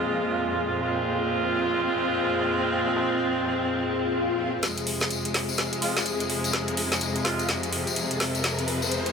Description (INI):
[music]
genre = bass house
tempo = 126 BPM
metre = 4/4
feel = swing 61% on 16ths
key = F minor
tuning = A4 = 440 Hz
[part]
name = bright chamber string section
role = sustained chords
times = 0.0-9.1 s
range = F2 to C4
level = -28 LUFS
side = left 2 dB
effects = none
[part]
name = clear horn section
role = stabs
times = 0.0-7.5 s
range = Ab3 to F4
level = -29 LUFS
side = right 3 dB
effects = vintage 12-bit sampler grit, low-pass filter, tape echo
[part]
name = warbly tape-like pad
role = texture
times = 0.0-9.1 s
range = F4 to Ab5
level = -32 LUFS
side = right 1 dB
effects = chorus, built-in reverb
[part]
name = breakbeat sampler-style drum kit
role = drums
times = 0.1-4.5 s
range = hi-hat, snare drum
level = -42 LUFS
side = left 1 dB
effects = none
[part]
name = swell and riser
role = sound effects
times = 3.8-9.1 s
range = none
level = -33 LUFS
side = left 3 dB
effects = none
[part]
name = garage drum kit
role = drums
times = 4.6-9.1 s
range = hi-hat, snare drum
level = -28 LUFS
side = equal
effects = high-pass filter on snare, high-pass filter on hats, high-pass filter on room
[part]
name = tambourine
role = percussion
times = 4.6-9.1 s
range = none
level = -33 LUFS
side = left 5 dB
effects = none
[sound]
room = moderate lush hall reverb, RT60 2.1 s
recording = none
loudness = -23 LUFS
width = side -6 dB against mid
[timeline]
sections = 0.0-4.6 A section; 4.6-9.1 B section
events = swell 3.8-4.6; build-up 4.6-9.1; drum fill 4.6-9.1; riser 4.6-9.1; filter sweep on horn section 4.6-9.1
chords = 0.0 Fm